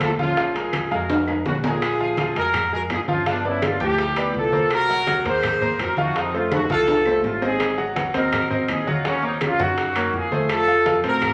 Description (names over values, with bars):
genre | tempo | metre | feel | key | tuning
latin, salsa | 166 BPM | 4/4 | straight | Bb minor | A4 = 441 Hz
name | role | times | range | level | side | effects
mellow horn section | melody | 0.0-11.3 s | Bb3 to C5 | -24 LUFS | equal | none
bright grand piano | accompaniment | 0.0-11.3 s | F3 to G5 | -28 LUFS | equal | none
upright bass | bass | 0.0-11.3 s | Ab1 to A2 | -34 LUFS | equal | none
bongos | percussion | 0.0-11.3 s | none | -35 LUFS | equal | none
claves | percussion | 0.0-11.3 s | none | -37 LUFS | equal | none
congas | percussion | 0.0-11.3 s | none | -33 LUFS | equal | none
timbales | percussion | 0.0-11.3 s | none | -31 LUFS | equal | none
room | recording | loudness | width
wet large studio reverb, RT60 0.9 s | vinyl crackle, nothing above 10.9 kHz | -21 LUFS | mono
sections
0.0-1.8 A section; 1.8-11.3 A section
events
drum fill 1.1-1.8, 6.5-7.6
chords
0.4 Bb7(no3); 3.3 G7; 4.7 Cm7b5; 6.2 F7; 7.6 Ab7; 9.0 Ebm9; 10.5 F